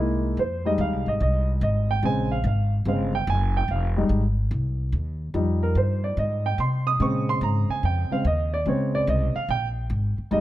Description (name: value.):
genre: jazz, big band swing.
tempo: 145 BPM.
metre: 4/4.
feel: swing 67% on 8ths.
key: unclear.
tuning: A4 = 438 Hz.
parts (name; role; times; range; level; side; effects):
warm baby grand piano; accompaniment; 0.0-10.4 s; Db3 to Eb6; -24 LUFS; right 1 dB; none.
upright bass; bass; 0.0-10.4 s; F1 to C3; -24 LUFS; equal; none.
room: light reverb.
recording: close, detailed microphones.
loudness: -22 LUFS.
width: side -14 dB against mid.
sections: 0.4-10.4 A section.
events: grand piano solo 0.4-10.4.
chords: 0.4 Fm7; 2.0 Bbm7; 3.7 Fm7; 7.0 Bbm7.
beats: | 0.37 0.78 1.20 1.61 | 2.03 2.44 2.85 3.27 | 3.68 4.10 4.51 4.93 | 5.34 5.75 6.17 6.58 | 7.00 7.41 7.82 8.24 | 8.65 9.07 9.48 9.89 | 10.31.